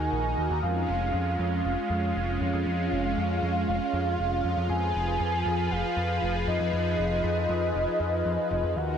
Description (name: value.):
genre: synthwave.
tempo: 118 BPM.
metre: 4/4.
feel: straight.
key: unclear.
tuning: A4 = 442 Hz.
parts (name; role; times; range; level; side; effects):
soft octave-layered synth lead; melody; 0.0-9.0 s; Eb5 to Ab5; -30 LUFS; equal; chorus, tremolo, tape echo.
warm analog pad; sustained chords; 0.0-9.0 s; Eb3 to Cb5; -29 LUFS; right 1 dB; chorus.
overdriven picked electric bass; bass; 0.0-9.0 s; F1 to F2; -29 LUFS; equal; none.
room: wet lush hall reverb, RT60 3.0 s.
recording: dreamy mix soaked in reverb.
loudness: -25 LUFS.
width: side -8 dB against mid.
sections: 0.0-9.0 A section.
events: none.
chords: 0.0 Ebm; 0.6 Db/F; 4.7 Fdim.